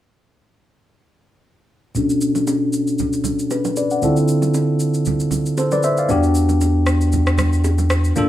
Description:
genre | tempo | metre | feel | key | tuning
amapiano | 116 BPM | 4/4 | swing 55% on 16ths | B minor | A4 = 438 Hz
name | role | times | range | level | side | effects
tine electric piano | accompaniment | 1.9-8.3 s | B2 to F#5 | -17 LUFS | left 1 dB | low-pass filter
electronic shaker and rim click | drums | 2.0-8.3 s | none | -28 LUFS | equal | overdrive
congas and bongos | percussion | 2.0-8.3 s | none | -26 LUFS | right 6 dB | none
punchy sub bass | bass | 6.1-8.3 s | E2 to G2 | -17 LUFS | equal | none
swell | sound effects | 8.2-8.3 s | none | barely audible | none | none
room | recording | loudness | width
light reverb | small room ambience | -16 LUFS | side -13 dB against mid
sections
2.0-8.3 A section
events
filter sweep on tine electric piano 2.0-8.3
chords
2.0 Bm9; 4.0 Dm9; 6.1 Em9

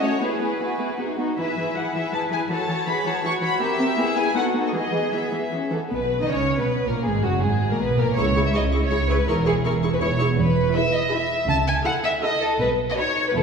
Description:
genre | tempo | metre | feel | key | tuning
quick classical-period movement for string orchestra | 161 BPM | 3/4 | rubato | E major, B major from 5.9 s, E major from 10.4 s | A4 = 440 Hz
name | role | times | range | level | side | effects
rich studio violin section | melody | 0.0-13.4 s | F#4 to E6 | -28 LUFS | left 3 dB | none
warm studio violin section | second line | 0.0-13.4 s | B3 to A5 | -24 LUFS | left 1 dB | none
warm studio viola section | accompaniment | 0.0-13.4 s | E3 to A4 | -27 LUFS | equal | none
dark studio cello section | bass | 0.0-13.4 s | C#2 to B4 | -27 LUFS | right 2 dB | none
warm studio double bass section | bass | 5.9-13.4 s | E1 to C#2 | -26 LUFS | right 3 dB | none
room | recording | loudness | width
wet scoring stage reverb, RT60 2.0 s | heard from further back in the room | -20 LUFS | side -6 dB against mid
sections
0.0-5.9 A section; 5.9-13.4 B section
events
none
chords
0.2 E/B; 1.4 E; 2.5 F#m7/E; 3.6 C7; 4.0 E; 4.3 B7; 4.7 E; 5.9 B; 7.1 B5; 8.2 C#m; 9.3 C#m/E; 11.5 A/C#; 12.6 B

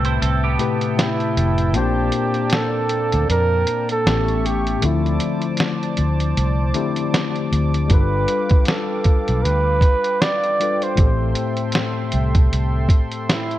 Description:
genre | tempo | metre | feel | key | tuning
lo-fi hip hop | 78 BPM | 4/4 | swing 59% on 16ths | A minor | A4 = 441 Hz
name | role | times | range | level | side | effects
semi-hollow electric guitar | second line | 0.0-1.6 s | B3 to C5 | -26 LUFS | right 6 dB | analog chorus, low-pass filter, slapback echo
barky tine electric piano | accompaniment | 0.0-13.6 s | A2 to C5 | -23 LUFS | left 6 dB | medium stereo tremolo, cassette tape, low-pass filter
warm analog pad | sustained chords | 0.0-13.6 s | Bb3 to D6 | -29 LUFS | right 2 dB | chorus, low-pass filter
vintage muted fingered electric bass | bass | 0.0-12.9 s | F1 to F2 | -20 LUFS | equal | none
lo-fi sampler-style drum kit | drums | 0.0-13.6 s | hi-hat, kick drum, snare drum | -19 LUFS | equal | none
breathy flugelhorn | melody | 1.0-13.6 s | E4 to D5 | -22 LUFS | right 3 dB | low-pass filter, slapback echo
room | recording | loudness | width
light reverb | dark, warm production | -16 LUFS | side -14 dB against mid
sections
0.0-13.6 A section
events
break 0.0-7.9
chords
0.0 Am7; 1.7 Bbmaj9; 4.1 A7; 4.8 Dm7; 7.9 G7; 11.0 Am7

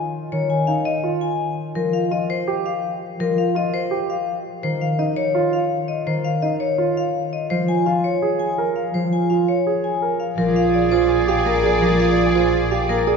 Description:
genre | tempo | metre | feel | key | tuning
classical, minimalist pattern music | 167 BPM | 4/4 | straight | unclear | A4 = 440 Hz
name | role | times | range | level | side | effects
concert harp | accompaniment | 0.0-13.2 s | Eb3 to Bb3 | -22 LUFS | right 2 dB | none
vibraphone with hard mallets | melody | 0.3-13.2 s | Bb4 to Ab5 | -22 LUFS | left 7 dB | none
warm grand piano | arpeggios | 0.7-13.2 s | Eb4 to Bb4 | -25 LUFS | right 8 dB | none
clear oboe | second line | 10.4-13.0 s | Ab4 | -26 LUFS | right 3 dB | none
rich symphonic string section | sustained chords | 10.4-13.0 s | Ab4 to D5 | -26 LUFS | equal | none
rich double bass | bass | 10.4-13.1 s | Bb1 | -26 LUFS | equal | none
room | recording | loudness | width
wet cathedral reverb, RT60 4.2 s | recorded in a church or concert hall, nothing above 7.4 kHz | -18 LUFS | side -5 dB against mid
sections
0.0-10.4 A section; 10.4-13.2 B section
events
none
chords
0.0 Db (rootless); 1.8 Fsus2; 4.6 Ebsus2; 7.5 Bb7(no3); 10.4 Bb13

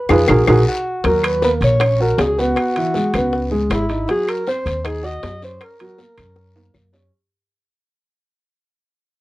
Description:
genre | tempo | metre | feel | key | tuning
Afro-Cuban jazz | 158 BPM | 4/4 | straight | unclear | A4 = 440 Hz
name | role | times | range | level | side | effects
dark alto saxophone | melody | 0.0-6.8 s | E4 to D#5 | -20 LUFS | equal | none
dark concert grand piano | accompaniment | 0.1-7.1 s | E3 to F#5 | -20 LUFS | right 1 dB | none
upright bass | bass | 0.1-7.1 s | G#1 to F#2 | -20 LUFS | equal | none
bongos | percussion | 0.1-7.0 s | none | -26 LUFS | left 5 dB | none
claves | percussion | 0.1-6.9 s | none | -25 LUFS | left 3 dB | none
guiro | percussion | 0.1-7.1 s | none | -36 LUFS | left 4 dB | none
timbales | percussion | 0.1-7.0 s | none | -23 LUFS | right 3 dB | none
room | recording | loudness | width
light reverb | worn, warbling old tape, cassette tape, warbly pitch drift | -15 LUFS | side -17 dB against mid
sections
0.0-1.1 A section; 1.1-7.1 B section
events
band accent 0.0-1.1; drum fill 0.5-1.1, 6.4-7.1; fade-out 1.1-7.1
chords
0.3 F#add9/A#; 1.1 D#m7; 2.6 C#m9; 4.1 D#m6; 5.6 F#

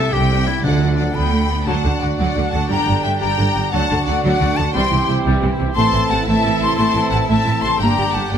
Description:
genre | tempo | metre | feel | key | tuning
cinematic | 118 BPM (dotted quarters) | 6/8 | straight | D mixolydian | A4 = 440 Hz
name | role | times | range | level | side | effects
warm symphonic violin section | melody | 0.0-8.4 s | D5 to C6 | -27 LUFS | left 4 dB | none
bright clarinet | second line | 0.0-1.5 s | D4 to A4 | -23 LUFS | left 4 dB | none
warm symphonic violin section | second line | 0.0-8.4 s | D5 to A5 | -24 LUFS | left 5 dB | none
rich symphonic viola section | accompaniment | 0.0-8.4 s | C3 to G4 | -23 LUFS | right 1 dB | none
rich symphonic cello section | bass | 0.0-8.4 s | G2 to D3 | -22 LUFS | right 2 dB | none
rich symphonic double bass section | bass | 0.0-8.4 s | G1 to D2 | -21 LUFS | right 2 dB | none
timpani | percussion | 0.6-1.1 s | D3 | -24 LUFS | right 1 dB | none
bright silver concert flute | second line | 1.0-8.4 s | F#5 to C6 | -23 LUFS | left 3 dB | none
mellow trombone section | sustained chords | 1.7-8.4 s | D3 to D4 | -26 LUFS | right 4 dB | none
dark trumpet section | stabs | 1.7-8.4 s | F#4 to A4 | -25 LUFS | equal | none
room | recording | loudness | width
moderate scoring stage reverb, RT60 1.8 s | none | -15 LUFS | side -8 dB against mid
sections
0.0-1.7 A section; 1.7-8.4 B section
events
none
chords
0.0 Csus2; 0.6 D; 2.7 Gm; 3.7 D; 4.7 C; 5.8 Am; 7.8 Gm

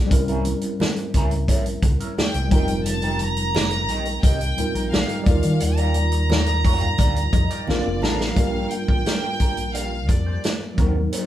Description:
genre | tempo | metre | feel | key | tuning
lush 1970s-style soul | 87 BPM | 4/4 | straight | Bb major | A4 = 442 Hz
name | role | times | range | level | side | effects
tine electric piano | accompaniment | 0.0-11.3 s | Gb3 to Bb5 | -26 LUFS | equal | overdrive, fast stereo tremolo
fingered electric bass | bass | 0.0-11.1 s | F1 to Eb3 | -24 LUFS | equal | none
electric guitar through a small old amp | riff | 0.1-11.3 s | C4 to D5 | -33 LUFS | right 1 dB | wah
vintage drum kit | drums | 0.1-11.3 s | hi-hat, kick drum, snare drum | -21 LUFS | equal | none
congas | percussion | 0.1-8.2 s | none | -32 LUFS | right 2 dB | none
vibraphone with soft mallets | texture | 1.1-10.3 s | F4 to Bb4 | -40 LUFS | equal | none
warm studio violin section | melody | 2.2-10.8 s | D5 to Bb5 | -28 LUFS | right 1 dB | none
room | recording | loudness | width
moderate studio reverb, RT60 0.6 s | band playing live in one room | -19 LUFS | side -12 dB against mid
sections
0.0-8.4 A section; 8.4-11.3 B section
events
tine electric piano fill 7.0-8.4; drum fill 7.7-8.4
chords
0.1 C7b9; 2.5 F9sus4; 5.3 Ebmaj9; 7.7 Bbmaj9; 8.4 Bb6

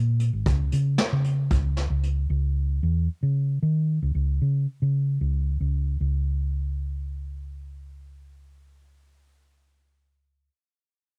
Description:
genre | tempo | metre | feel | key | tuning
progressive instrumental, band music in an uneven meter | 227 BPM (eighths) | 7/8 | straight | C# dorian | A4 = 440 Hz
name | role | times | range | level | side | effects
hollow-body short-scale fingered electric bass | bass | 0.0-10.5 s | G#1 to D#3 | -26 LUFS | equal | none
vintage brush drum kit | drums | 0.2-2.2 s | hi-hat, kick drum, snare drum | -28 LUFS | equal | cassette tape
room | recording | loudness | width
little or no reverb | home recording on cassette | -25 LUFS | mono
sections
0.0-6.0 A section; 6.0-9.7 B section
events
none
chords
none

